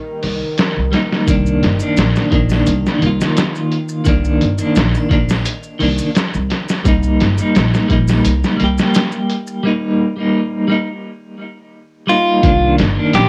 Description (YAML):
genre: trip hop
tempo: 86 BPM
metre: 4/4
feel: straight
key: C minor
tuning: A4 = 440 Hz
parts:
  - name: bowed-like drone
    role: texture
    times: 0.0-9.6 s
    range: Eb3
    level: -32 LUFS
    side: equal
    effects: none
  - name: upright bass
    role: bass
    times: 0.2-13.3 s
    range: G1 to C2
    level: -20 LUFS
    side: equal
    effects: tube saturation
  - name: trip hop sampler-style drum kit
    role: drums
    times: 0.2-13.3 s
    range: hi-hat, kick drum, snare drum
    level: -20 LUFS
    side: equal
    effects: cassette tape
  - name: clean electric guitar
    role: accompaniment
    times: 0.9-13.3 s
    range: Eb3 to G4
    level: -19 LUFS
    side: equal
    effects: tremolo, cassette tape, tape echo
  - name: maracas and triangle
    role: percussion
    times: 1.3-9.6 s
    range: none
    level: -39 LUFS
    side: equal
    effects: none
  - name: clean electric guitar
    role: melody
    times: 12.1-13.3 s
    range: F4 to G4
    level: -15 LUFS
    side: equal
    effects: none
room: light reverb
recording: home recording on cassette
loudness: -15 LUFS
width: mono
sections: 0.0-12.4 A section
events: break 9.6-12.4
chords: 0.0 Eb; 1.3 Cm9; 6.9 Eb; 12.4 Cm9